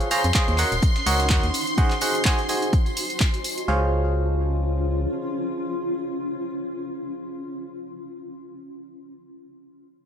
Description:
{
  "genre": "piano house",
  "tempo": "126 BPM",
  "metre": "4/4",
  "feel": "swing 56% on 16ths",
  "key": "Db major",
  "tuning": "A4 = 440 Hz",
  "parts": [
    { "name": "string machine, violins", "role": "sustained chords", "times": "0.0-3.7 s", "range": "C6 to C7", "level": "-29 LUFS", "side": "equal", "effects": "ensemble chorus, sidechain pumping" },
    { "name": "barking FM electric piano", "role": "riff", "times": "0.0-7.8 s", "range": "F4 to Bb5", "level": "-26 LUFS", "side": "right 1 dB", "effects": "chorus, sidechain pumping, low-pass filter, ping-pong delay" },
    { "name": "punchy analog drum machine", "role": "drums", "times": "0.0-3.7 s", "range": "handclaps, hi-hat", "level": "-27 LUFS", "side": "right 1 dB", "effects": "none" },
    { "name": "tambourine", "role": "percussion", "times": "0.0-3.7 s", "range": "none", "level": "-36 LUFS", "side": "left 12 dB", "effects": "none" },
    { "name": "granular cloud pad", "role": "texture", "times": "0.7-7.9 s", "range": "Db4 to C6", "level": "-30 LUFS", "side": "left 1 dB", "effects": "built-in reverb, sidechain pumping" },
    { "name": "electronic shaker and snare drum", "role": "drums", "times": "0.1-1.7 s", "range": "none", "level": "-37 LUFS", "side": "left 2 dB", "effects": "none" },
    { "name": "organ-like FM bass", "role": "bass", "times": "0.2-5.1 s", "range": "Eb1 to F2", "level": "-23 LUFS", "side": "equal", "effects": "sidechain pumping" },
    { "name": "electronic kick drum", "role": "drums", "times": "0.3-3.3 s", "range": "none", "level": "-21 LUFS", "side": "equal", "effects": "overdrive" }
  ],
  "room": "light reverb",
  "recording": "none",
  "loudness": "-21 LUFS",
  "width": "side -8 dB against mid",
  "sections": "0.0-3.7 A section; 3.7-7.5 B section",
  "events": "filter sweep on FM electric piano 0.0-3.7",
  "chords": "0.0 Dbmaj7; 0.6 Ebm7; 1.8 Ab7; 2.7 Gbm6; 3.7 Dbmaj7"
}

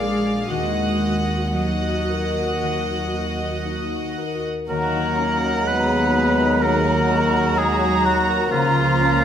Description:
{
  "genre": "classical, slow romantic movement for symphony orchestra",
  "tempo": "56-64 BPM",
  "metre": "4/4",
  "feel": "rubato",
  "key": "Eb minor",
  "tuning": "A4 = 440 Hz",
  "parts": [
    { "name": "warm symphonic violin section", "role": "melody", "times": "0.0-9.2 s", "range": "F5 to Bb5", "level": "-28 LUFS", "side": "equal", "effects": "none" },
    { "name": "warm symphonic violin section", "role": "second line", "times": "0.0-9.2 s", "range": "Db4 to Eb5", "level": "-30 LUFS", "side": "left 2 dB", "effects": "none" },
    { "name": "dark symphonic viola section", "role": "accompaniment", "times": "0.0-9.2 s", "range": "Gb3 to Ab4", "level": "-29 LUFS", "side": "right 1 dB", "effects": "none" },
    { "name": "concert harp", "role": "arpeggios", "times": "0.0-9.2 s", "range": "Bb2 to Bb5", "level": "-28 LUFS", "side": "left 6 dB", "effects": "none" },
    { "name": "dark symphonic double bass section", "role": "bass", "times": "0.0-9.2 s", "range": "Bb1 to Eb2", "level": "-28 LUFS", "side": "right 2 dB", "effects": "none" },
    { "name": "warm studio cello section", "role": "bass", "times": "0.0-9.2 s", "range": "Eb2 to Ab3", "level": "-27 LUFS", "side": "right 1 dB", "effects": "none" },
    { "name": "mellow flute section", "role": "second line", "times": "4.7-9.2 s", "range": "Bb5", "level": "-27 LUFS", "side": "left 2 dB", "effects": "none" },
    { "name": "warm oboe", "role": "second line", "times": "4.7-9.2 s", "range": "F4 to Cb5", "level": "-22 LUFS", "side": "right 1 dB", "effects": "none" },
    { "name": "mellow bassoon", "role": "accompaniment", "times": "4.7-9.2 s", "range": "F3 to Gb3", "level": "-28 LUFS", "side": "right 4 dB", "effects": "none" },
    { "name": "mellow French horn section", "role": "sustained chords", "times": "4.7-9.2 s", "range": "F3 to Cb4", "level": "-26 LUFS", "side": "left 4 dB", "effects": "none" },
    { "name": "mellow trombone section", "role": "sustained chords", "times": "4.7-9.2 s", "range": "Eb3 to Bb3", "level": "-28 LUFS", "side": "right 3 dB", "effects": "none" }
  ],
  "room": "wet recital hall reverb, RT60 1.4 s",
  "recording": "none",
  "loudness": "-18 LUFS",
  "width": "side -9 dB against mid",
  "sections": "0.0-4.7 A section; 4.7-9.2 A section",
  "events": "none",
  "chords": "0.5 Ebm; 8.5 Bbm/Db"
}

